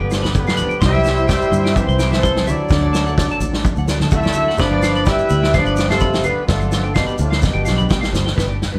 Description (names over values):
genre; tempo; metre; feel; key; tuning
highlife guitar band; 127 BPM; 4/4; swing 53% on 16ths; G major; A4 = 438 Hz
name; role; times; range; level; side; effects
warm horn section; melody; 0.0-8.2 s; F3 to E5; -23 LUFS; equal; none
breathy tenor saxophone; second line; 0.0-8.1 s; A2 to A3; -27 LUFS; equal; none
electric guitar at the edge of break-up; arpeggios; 0.0-8.8 s; B4 to C6; -28 LUFS; equal; phaser
fingered electric bass; bass; 0.0-8.8 s; G1 to G2; -23 LUFS; equal; none
nylon-string guitar; accompaniment; 0.1-8.8 s; E3 to G4; -32 LUFS; equal; none
vintage drum kit; drums; 0.1-8.7 s; kick drum, snare drum; -22 LUFS; equal; none
shekere; percussion; 0.1-8.7 s; none; -32 LUFS; equal; none
congas; percussion; 0.2-8.8 s; none; -28 LUFS; equal; none
room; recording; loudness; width
moderate studio reverb, RT60 0.8 s; band playing live in one room; -17 LUFS; mono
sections
0.0-8.4 A section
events
drum fill 7.4-8.4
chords
0.0 G7; 0.8 C; 2.7 D; 4.6 G7